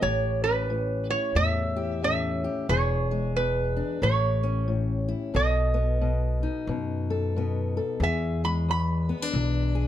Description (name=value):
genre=acoustic country blues, solo or duo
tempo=90 BPM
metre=4/4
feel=swing 60% on 8ths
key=unclear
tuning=A4 = 441 Hz
part: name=metal-body resonator slide guitar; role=melody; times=0.0-9.9 s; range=B4 to B5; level=-28 LUFS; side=right 4 dB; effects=plate reverb
part: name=fingerpicked steel-string acoustic guitar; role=accompaniment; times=0.0-9.9 s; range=E2 to A4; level=-30 LUFS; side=left 5 dB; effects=none
part: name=upright bass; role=bass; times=0.0-9.9 s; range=E1 to F#2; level=-27 LUFS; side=equal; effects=none
room=light reverb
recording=dark, warm production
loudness=-24 LUFS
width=side -11 dB against mid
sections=0.0-8.0 A section; 8.0-9.9 B section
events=resonator guitar played with a steel bar solo 8.0-9.9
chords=0.0 A7; 2.7 E7; 4.0 A7; 5.4 B7; 8.0 E7